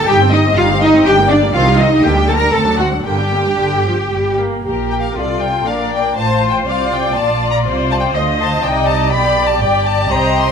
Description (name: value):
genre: quick classical-period movement for string orchestra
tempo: 121 BPM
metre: 3/4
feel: rubato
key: G minor, Bb major from 4.6 s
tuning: A4 = 444 Hz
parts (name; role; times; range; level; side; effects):
- rich chamber violin section; melody; 0.0-10.5 s; D5 to C6; -20 LUFS; left 4 dB; none
- clear symphonic violin section; second line; 0.0-10.5 s; D4 to Bb5; -18 LUFS; left 3 dB; none
- rich symphonic viola section; accompaniment; 0.0-10.5 s; D3 to Eb5; -19 LUFS; equal; none
- rich symphonic cello section; bass; 0.0-10.5 s; G2 to Bb4; -18 LUFS; right 2 dB; none
- dark symphonic double bass section; bass; 0.1-10.5 s; G1 to D2; -19 LUFS; right 2 dB; none
room: light reverb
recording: close, detailed microphones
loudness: -12 LUFS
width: side -7 dB against mid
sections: 0.0-4.6 A section; 4.6-10.5 B section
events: none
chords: 0.1 Cm/G; 1.1 Gm; 1.5 Cm; 2.0 Gm/D; 2.5 D7; 3.0 Gm; 4.6 Bb; 6.2 F/A; 7.2 Bb; 7.7 Cm; 9.1 G/B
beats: | 0.07 0.56 1.05 | 1.53 2.03 2.53 | 3.05 3.59 4.12 | 4.64 5.15 5.66 | 6.16 6.66 7.16 | 7.66 8.15 8.64 | 9.12 9.61 10.10